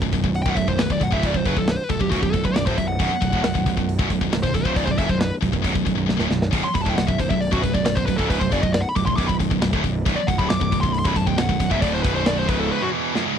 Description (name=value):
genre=heavy metal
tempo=136 BPM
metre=4/4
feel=straight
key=B minor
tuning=A4 = 440 Hz
part: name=heavy high-gain guitar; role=riff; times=0.0-13.4 s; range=B1 to E3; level=-27 LUFS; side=left 19 dB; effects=distortion
part: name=high-gain distorted guitar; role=riff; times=0.0-13.4 s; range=B1 to E3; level=-25 LUFS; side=right 12 dB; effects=distortion
part: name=fuzz picked electric bass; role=bass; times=0.0-12.7 s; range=B0 to F#1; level=-25 LUFS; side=left 1 dB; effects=overdrive
part: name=tight metal drum kit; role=drums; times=0.0-13.3 s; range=crash cymbal, hi-hat, kick drum, snare drum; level=-24 LUFS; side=left 1 dB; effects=none
part: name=dark smooth lead guitar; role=melody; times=0.4-12.9 s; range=F#4 to D6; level=-26 LUFS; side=left 1 dB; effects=overdrive
room=little or no reverb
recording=dry, close 1970s-style studio recording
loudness=-18 LUFS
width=side -8 dB against mid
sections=0.0-13.4 A section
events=lead electric guitar solo 0.0-13.4; drum fill 6.1-6.5, 13.2; break 12.7-13.4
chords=0.0 Bm